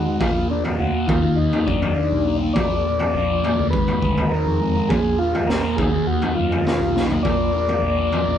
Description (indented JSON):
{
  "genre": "psychedelic rock",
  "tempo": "102 BPM",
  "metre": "4/4",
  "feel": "straight",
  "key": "Bb phrygian dominant",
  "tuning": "A4 = 438 Hz",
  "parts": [
    { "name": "overdriven combo organ", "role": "melody", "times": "0.0-8.4 s", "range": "D4 to D5", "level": "-23 LUFS", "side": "left 2 dB", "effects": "none" },
    { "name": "fuzz guitar", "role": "riff", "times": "0.0-8.4 s", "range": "Ab2 to Eb4", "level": "-22 LUFS", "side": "equal", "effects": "distortion, phaser" },
    { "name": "fingered electric bass", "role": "bass", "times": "0.0-8.4 s", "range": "Ab1 to Ab2", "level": "-26 LUFS", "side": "equal", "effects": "none" },
    { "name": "raw garage drum kit", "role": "drums", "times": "0.2-8.3 s", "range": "kick drum, snare drum, toms", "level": "-23 LUFS", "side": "equal", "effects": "none" },
    { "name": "tonewheel organ", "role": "sustained chords", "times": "7.2-8.4 s", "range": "Bb4 to Bb5", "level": "-35 LUFS", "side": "right 3 dB", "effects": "stopped rotary speaker" }
  ],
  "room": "moderate studio reverb, RT60 0.6 s",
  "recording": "band playing live in one room",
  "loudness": "-18 LUFS",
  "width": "side -9 dB against mid",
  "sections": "0.0-8.4 A section",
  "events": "drum fill 7.0",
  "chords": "0.2 Bb; 1.1 Ebm; 2.6 Bb; 3.7 Abm; 4.9 Bb5; 5.8 Ebm; 7.2 Bb",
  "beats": "| 0.20 0.79 1.38 1.97 | 2.55 3.14 3.73 4.31 | 4.90 5.49 6.07 6.66 | 7.24 7.83"
}